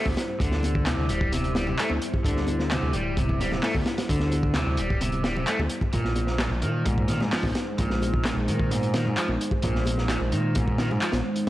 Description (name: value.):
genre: breakbeat, breaks.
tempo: 130 BPM.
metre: 4/4.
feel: straight.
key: unclear.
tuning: A4 = 440 Hz.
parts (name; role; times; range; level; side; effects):
deep dark ambient pad; sustained chords; 0.0-11.5 s; G3 to C5; -31 LUFS; equal; chorus, built-in reverb, sidechain pumping.
overdriven semi-hollow guitar; riff; 0.0-11.1 s; Ab2 to A3; -28 LUFS; equal; tape echo.
fat analog bass; bass; 0.1-11.5 s; D1 to Bb2; -28 LUFS; equal; none.
crunchy breakbeat drum kit; drums; 0.1-11.5 s; hi-hat, kick drum, snare drum; -28 LUFS; equal; none.
congas and bongos; percussion; 0.1-11.2 s; none; -37 LUFS; left 2 dB; none.
electronic handclaps; drums; 0.9-11.1 s; none; -32 LUFS; equal; overdrive.
room: light reverb.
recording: dry, gritty hardware recording, cassette tape.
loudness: -23 LUFS.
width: side -15 dB against mid.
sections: 0.0-11.5 A section.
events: none.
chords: 0.0 D9sus4; 5.9 Bb9sus4.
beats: | 0.40 0.86 1.32 1.78 | 2.25 2.71 3.17 3.63 | 4.09 4.55 5.01 5.48 | 5.94 6.40 6.86 7.32 | 7.78 8.24 8.71 9.17 | 9.63 10.09 10.55 11.01 | 11.48.